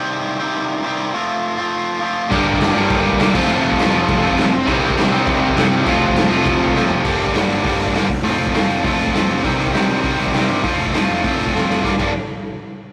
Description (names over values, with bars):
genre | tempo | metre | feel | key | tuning
punk rock | 202 BPM | 4/4 | straight | unclear | A4 = 441 Hz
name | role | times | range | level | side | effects
distorted electric guitar | riff | 0.0-12.1 s | G2 to G4 | -23 LUFS | equal | overdrive
crunchy overdriven guitar | riff | 2.3-7.0 s | F2 to C4 | -23 LUFS | equal | none
distorted electric guitar | riff | 2.3-12.1 s | G2 to Bb4 | -21 LUFS | equal | distortion
fuzz picked electric bass | bass | 2.3-12.1 s | F1 to C3 | -28 LUFS | equal | overdrive
raw garage drum kit | drums | 2.3-12.1 s | crash cymbal, hi-hat, kick drum, snare drum, toms | -22 LUFS | equal | none
room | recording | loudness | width
moderate studio reverb, RT60 0.5 s | rough rehearsal-room recording, warm saturation | -17 LUFS | mono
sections
0.0-7.0 A section; 7.0-11.8 B section; 11.8-12.9 C section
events
drum fill 6.7, 11.5-11.8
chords
0.0 Cm; 1.1 F; 2.3 Gm; 3.3 F; 4.7 Cm; 5.9 F; 7.0 Gm; 8.1 F; 9.4 Cm; 10.6 F; 11.8 Gm